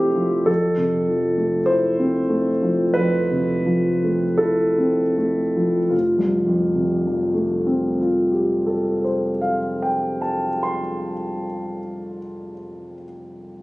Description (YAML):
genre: classical, impressionist solo piano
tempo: 38-52 BPM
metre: 4/4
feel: rubato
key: F lydian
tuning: A4 = 441 Hz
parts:
  - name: warm concert grand piano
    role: solo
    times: 0.0-13.6 s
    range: F1 to C6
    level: -19 LUFS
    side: equal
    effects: none
room: moderate scoring stage reverb, RT60 1.9 s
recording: recorded on a phone in the room, studio reverb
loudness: -18 LUFS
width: side -19 dB against mid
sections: 0.0-5.9 A section; 5.9-11.6 B section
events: slowing down 0.0-5.9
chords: 0.0 Fmaj7; 5.9 Fadd9